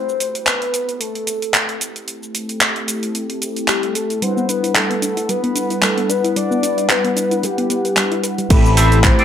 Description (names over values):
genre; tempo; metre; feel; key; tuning
nu-disco, nu disco; 112 BPM; 4/4; swing 55% on 16ths; A dorian; A4 = 440 Hz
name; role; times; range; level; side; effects
soft octave-layered synth lead; melody; 0.0-9.2 s; G4 to D5; -22 LUFS; left 2 dB; chorus, phaser, tape echo
mellow synth brass; accompaniment; 0.0-9.2 s; G3 to B5; -22 LUFS; equal; chorus
house drum kit; drums; 0.1-9.2 s; cabasa, crash cymbal, handclaps, hi-hat; -19 LUFS; right 1 dB; none
soft round pluck; arpeggios; 4.2-8.4 s; G3 to B4; -24 LUFS; left 4 dB; chorus, sidechain pumping, tape echo
fingered electric bass with an envelope filter; bass; 8.5-9.1 s; A1; -14 LUFS; equal; none
electronic kick drum; drums; 8.5-9.2 s; none; -13 LUFS; equal; none
twangy electric guitar; riff; 8.8-9.2 s; G4 to E5; -17 LUFS; right 3 dB; lush chorus
room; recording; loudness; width
light reverb, digital ambience; none; -15 LUFS; side -9 dB against mid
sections
0.0-8.5 A section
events
none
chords
0.0 Am7; 4.2 Em7; 8.5 Am7